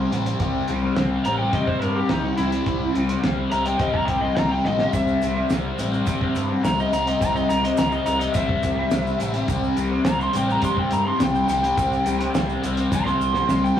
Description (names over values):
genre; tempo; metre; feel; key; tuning
psychedelic rock; 105 BPM; 4/4; straight; C major; A4 = 444 Hz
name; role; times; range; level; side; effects
fuzz guitar; riff; 0.0-13.8 s; C3 to C4; -23 LUFS; left 1 dB; distortion, phaser
growling picked electric bass; bass; 0.0-13.8 s; A1 to C3; -29 LUFS; equal; overdrive
cloth-damped thuddy drum kit; drums; 0.1-13.8 s; hi-hat, kick drum, snare drum; -26 LUFS; equal; none
overdriven slide guitar; melody; 1.3-13.8 s; Eb4 to C6; -24 LUFS; equal; none
tube shaker; percussion; 4.9-13.7 s; none; -44 LUFS; right 6 dB; none
room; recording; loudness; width
wet studio ambience, RT60 0.5 s; rough rehearsal-room recording, studio reverb; -19 LUFS; side -10 dB against mid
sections
0.0-13.8 A section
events
electric slide guitar solo 0.0-13.8; drum fill 4.7, 12.9-13.8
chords
0.0 C5